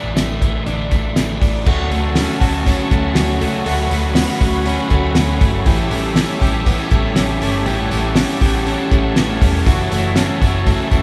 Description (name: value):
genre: jangly indie pop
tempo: 120 BPM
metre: 4/4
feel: straight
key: D major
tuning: A4 = 440 Hz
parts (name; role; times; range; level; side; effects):
- crunchy overdriven guitar; accompaniment; 0.0-11.0 s; F#2 to E4; -25 LUFS; equal; none
- direct-recorded clean electric guitar; arpeggios; 0.0-11.0 s; E3 to G4; -25 LUFS; equal; tube saturation, harmonic tremolo
- vintage muted fingered electric bass; bass; 0.0-11.0 s; E1 to D2; -24 LUFS; equal; none
- cloth-damped thuddy drum kit; drums; 0.2-11.0 s; crash cymbal, hi-hat, kick drum, snare drum; -20 LUFS; equal; none
- tambourine; percussion; 0.2-1.5, 9.7-11.0 s; none; -42 LUFS; equal; none
- lush unison pad; sustained chords; 1.7-11.0 s; F#4 to B5; -27 LUFS; equal; chorus
room: wet recital hall reverb, RT60 1.5 s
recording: recorded in a church or concert hall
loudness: -17 LUFS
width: mono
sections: 0.0-1.7 A section; 1.7-11.0 B section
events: none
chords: 0.0 Asus4; 1.7 Dmaj7; 5.7 A7; 9.7 F#m7